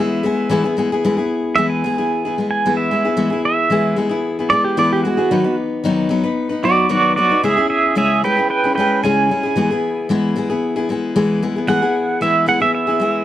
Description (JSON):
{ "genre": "rock", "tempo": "113 BPM", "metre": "4/4", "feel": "straight", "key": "E major", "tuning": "A4 = 440 Hz", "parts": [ { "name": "pedal steel guitar", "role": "melody", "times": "0.0-13.2 s", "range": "F#4 to G#5", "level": "-17 LUFS", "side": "right 4 dB", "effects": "none" }, { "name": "picked steel-string acoustic guitar", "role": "accompaniment", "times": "0.0-13.2 s", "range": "C#3 to B4", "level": "-17 LUFS", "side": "left 3 dB", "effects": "none" } ], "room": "small room ambience", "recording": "dry, close 1970s-style studio recording", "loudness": "-15 LUFS", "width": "side -12 dB against mid", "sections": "0.0-1.0 A section; 1.0-13.2 B section", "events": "pedal steel guitar solo 1.0-13.2", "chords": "0.0 E; 5.3 B/D#; 7.4 C#m; 9.6 E" }